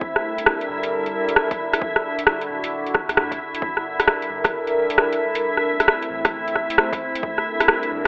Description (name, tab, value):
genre	future garage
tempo	133 BPM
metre	4/4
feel	swing 65% on 16ths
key	G dorian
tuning	A4 = 440 Hz
part	warbly tape-like pad	sustained chords	0.0-8.1 s	D3 to Bb4	-28 LUFS	equal	chorus, built-in reverb, phaser, vintage 12-bit sampler grit, sidechain pumping
part	electronic kick drum	drums	0.0-8.1 s	none	-33 LUFS	equal	overdrive
part	backwards swelling texture	texture	0.0-8.1 s	E4 to E5	-28 LUFS	equal	built-in reverb
part	deep house drum kit	drums	0.2-8.1 s	hi-hat, rim click	-22 LUFS	equal	overdrive
part	soft 808-style bass	bass	0.7-8.1 s	D1 to D2	-48 LUFS	equal	tube saturation, sidechain pumping
room	moderate lush hall reverb, RT60 1.9 s, digital ambience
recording	dry, gritty hardware recording, telephone sound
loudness	-21 LUFS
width	mono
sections	0.0-3.6 A section; 3.6-8.1 B section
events	none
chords	0.0 Gmadd9; 1.8 D; 3.6 Gmadd9; 5.4 Am; 7.2 Gmadd9